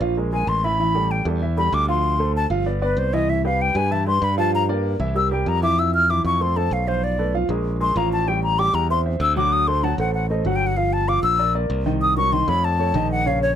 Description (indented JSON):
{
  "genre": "Afro-Cuban jazz",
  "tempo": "192 BPM",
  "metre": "4/4",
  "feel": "straight",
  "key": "C major",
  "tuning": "A4 = 440 Hz",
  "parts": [
    { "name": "warm grand piano", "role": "accompaniment", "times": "0.0-13.5 s", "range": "Db3 to G5", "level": "-24 LUFS", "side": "right 2 dB", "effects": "none" },
    { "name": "modern bright fingered electric bass", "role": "bass", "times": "0.0-13.6 s", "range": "G1 to G2", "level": "-23 LUFS", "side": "equal", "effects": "none" },
    { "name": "hollow concert flute", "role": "melody", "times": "0.3-13.5 s", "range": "B4 to F6", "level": "-21 LUFS", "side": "left 2 dB", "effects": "none" }
  ],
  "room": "little or no reverb",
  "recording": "close, detailed microphones",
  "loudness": "-18 LUFS",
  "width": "side -9 dB against mid",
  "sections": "0.0-5.8 A section; 5.8-13.6 A section",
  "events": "flute solo 0.0-13.6",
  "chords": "0.2 Caug7; 0.8 Asus2; 2.0 Dm7; 2.7 G6; 3.3 Cmaj7; 4.5 Gm7; 5.2 C7; 5.8 Fmaj7; 7.0 Bm7b5; 7.7 Bb5; 8.3 Am7; 9.5 D7; 10.8 Gm7; 12.0 Cm7b5; 12.6 Faug7"
}